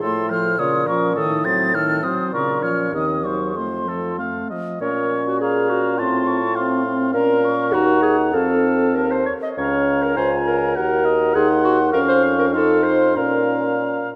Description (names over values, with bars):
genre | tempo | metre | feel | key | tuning
quick classical-period movement for wind quintet | 94-105 BPM | 2/4 | rubato | Bb minor | A4 = 444 Hz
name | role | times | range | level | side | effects
hollow concert flute | melody | 0.0-14.1 s | A5 to A6 | -28 LUFS | equal | none
warm oboe | second line | 0.0-14.1 s | A4 to A5 | -28 LUFS | equal | none
warm French horn | accompaniment | 0.0-14.1 s | Db3 to Gb4 | -26 LUFS | equal | none
warm clarinet | accompaniment | 0.0-13.8 s | A3 to Eb5 | -24 LUFS | equal | none
mellow bassoon | bass | 0.0-14.1 s | Db2 to Bb2 | -26 LUFS | equal | none
room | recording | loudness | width
wet concert hall reverb, RT60 2.3 s | none | -19 LUFS | mono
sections
0.0-4.8 A section; 4.8-14.2 B section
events
none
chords
0.0 F/A; 0.6 Bbm; 1.2 Adim7; 2.3 Bbm; 2.9 Cdim/Eb; 3.6 F; 4.8 Bbm; 6.0 F/A; 7.1 Bbm; 7.7 Ebm; 8.3 F; 9.6 Db; 10.2 Bbm/Db; 10.8 Ebm; 11.4 Cdim/Eb; 11.9 Bbmadd9/F (rootless); 12.5 F7; 13.2 Bbm